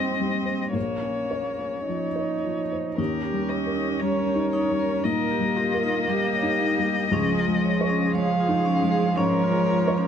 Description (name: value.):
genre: neoclassical piano and strings.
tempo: 52-59 BPM.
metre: 4/4.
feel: rubato.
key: unclear.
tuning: A4 = 443 Hz.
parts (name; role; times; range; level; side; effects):
muted violin; melody; 0.0-10.1 s; Bb4 to F5; -27 LUFS; left 4 dB; none.
muted cello; second line; 0.0-10.1 s; F3 to Eb4; -27 LUFS; right 6 dB; none.
felt-muted upright piano; accompaniment; 0.0-10.1 s; Bb1 to Db5; -27 LUFS; left 2 dB; none.
muted viola; accompaniment; 3.0-10.1 s; F4 to Bb4; -32 LUFS; right 3 dB; none.
vibraphone with medium hard mallets; arpeggios; 3.0-10.1 s; Db4 to Db5; -31 LUFS; left 2 dB; none.
room: light reverb.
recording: close, detailed microphones.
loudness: -22 LUFS.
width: side -8 dB against mid.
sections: 0.0-3.0 A section; 3.0-10.1 B section.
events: none.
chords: 0.0 Cm/Bb; 0.7 Bbm; 3.0 Eb7; 7.1 Dbadd9.